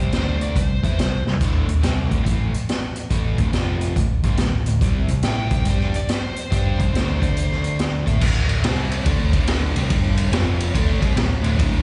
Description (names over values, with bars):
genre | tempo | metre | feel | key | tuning
blues rock power trio and southern rock | 141 BPM | 4/4 | swing 65% on 8ths | unclear | A4 = 441 Hz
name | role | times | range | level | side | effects
biting lead guitar | melody | 0.0-1.2, 5.2-7.8 s | C5 to G5 | -33 LUFS | equal | overdrive, slapback echo, digital delay
crunchy overdriven guitar | riff | 0.0-11.8 s | D2 to A4 | -28 LUFS | equal | slapback echo
overdriven picked electric bass | bass | 0.0-11.8 s | D1 to A2 | -24 LUFS | equal | none
raw garage drum kit | drums | 0.1-11.7 s | crash cymbal, hi-hat, kick drum, ride cymbal, snare drum, toms | -24 LUFS | equal | none
room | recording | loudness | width
little or no reverb | live gig heard through the venue's PA, recital hall reverb, nothing above 10.4 kHz | -20 LUFS | mono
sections
0.0-8.2 A section; 8.2-11.8 B section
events
drum fill 1.2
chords
0.1 D5; 0.6 C5; 1.4 D5; 3.5 F5; 4.0 D5; 4.8 C5; 7.2 D5; 8.0 A5; 8.2 D5; 8.6 C5; 9.1 D5; 9.9 G5; 10.3 F5; 10.8 D5